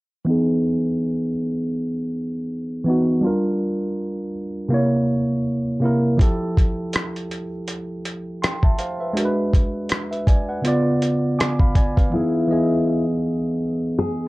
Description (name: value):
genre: lo-fi hip hop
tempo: 81 BPM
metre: 4/4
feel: swing 57% on 16ths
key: unclear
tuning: A4 = 444 Hz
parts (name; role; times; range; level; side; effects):
- tine electric piano; accompaniment; 0.2-14.3 s; C3 to D6; -20 LUFS; equal; cassette tape, low-pass filter
- dusty soul sampler-style drum kit; drums; 6.2-12.1 s; hi-hat, kick drum, rim click; -18 LUFS; equal; none
- nylon-string guitar; melody; 12.1-14.3 s; E4 to G#4; -23 LUFS; left 3 dB; low-pass filter, plate reverb
room: wet small room ambience, RT60 0.5 s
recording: cassette tape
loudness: -19 LUFS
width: side -21 dB against mid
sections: 0.3-12.1 A section; 12.1-14.3 B section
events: filter sweep on tine electric piano 0.3-12.1; filter sweep 12.1-14.3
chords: 0.3 Emaj7; 3.2 Gm7; 4.7 C7b9; 6.2 Fmaj9; 9.2 G#m7b5; 10.6 C#7b9; 12.1 Emaj7